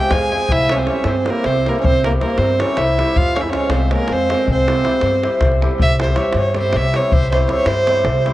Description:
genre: balkan folk, Balkan wedding band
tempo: 318 BPM (eighths)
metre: 7/8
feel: straight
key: C phrygian dominant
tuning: A4 = 440 Hz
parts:
  - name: rich fiddle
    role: melody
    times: 0.0-8.3 s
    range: Bb4 to Ab5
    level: -19 LUFS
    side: equal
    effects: analog delay
  - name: mellow clarinet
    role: second line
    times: 0.0-5.4 s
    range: Bb3 to Ab4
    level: -23 LUFS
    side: right 3 dB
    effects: none
  - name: cimbalom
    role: accompaniment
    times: 0.0-8.3 s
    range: G3 to Ab4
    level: -21 LUFS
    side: equal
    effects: analog delay
  - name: davul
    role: percussion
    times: 0.0-8.3 s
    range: none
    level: -22 LUFS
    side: equal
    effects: analog delay
  - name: upright bass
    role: bass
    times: 0.1-8.3 s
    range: C2 to G2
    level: -20 LUFS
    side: equal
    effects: none
room: light reverb, small room ambience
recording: echo-heavy mix, cassette tape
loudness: -14 LUFS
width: side -15 dB against mid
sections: 0.0-5.8 A section; 5.8-8.3 B section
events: none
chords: 0.0 Fm; 0.5 C; 3.2 Fm; 4.5 C

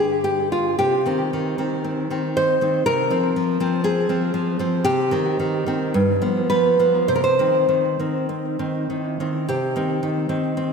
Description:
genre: romantic piece for solo classical guitar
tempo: 49-61 BPM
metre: 2/4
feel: rubato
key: C minor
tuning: A4 = 441 Hz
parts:
  - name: nylon-string guitar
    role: solo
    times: 0.0-10.7 s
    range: G2 to C5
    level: -18 LUFS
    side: equal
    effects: analog delay
room: wet lush hall reverb, RT60 2.7 s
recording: dreamy mix soaked in reverb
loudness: -18 LUFS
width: side -5 dB against mid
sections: 0.0-9.5 A section; 9.5-10.7 A section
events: none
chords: 0.0 G5; 0.8 Cm; 2.9 Fm/C; 4.9 Cm; 5.9 G7; 7.1 Cm

